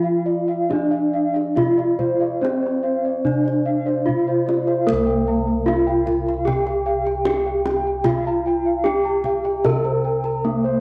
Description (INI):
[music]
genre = Javanese gamelan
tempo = 67-76 BPM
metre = 4/4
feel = straight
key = C slendro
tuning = A4 = 440 Hz
[part]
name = gamelan-type bronze metallophone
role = melody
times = 0.0-10.8 s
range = Bb3-45c to Bb4-45c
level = -23 LUFS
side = equal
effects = cassette tape
[part]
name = gamelan-type bossed gongs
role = arpeggios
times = 0.0-10.8 s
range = Bb4-45c to Bb5-45c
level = -30 LUFS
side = equal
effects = cassette tape
[part]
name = gamelan-type bronze metallophone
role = arpeggios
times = 0.0-10.8 s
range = Bb4-45c to Bb5-45c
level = -30 LUFS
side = equal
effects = cassette tape, tape echo
[part]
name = gamelan-type bossed gongs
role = bass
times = 0.0-10.8 s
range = C2 to Bb4-45c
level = -29 LUFS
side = equal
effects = none
[part]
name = kendang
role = percussion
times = 0.7-10.5 s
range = none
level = -30 LUFS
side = equal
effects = none
[sound]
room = moderate spring reverb, RT60 1.5 s, small room ambience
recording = home recording on cassette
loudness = -20 LUFS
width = mono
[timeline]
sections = 0.0-4.9 A section; 4.9-10.8 B section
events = none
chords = none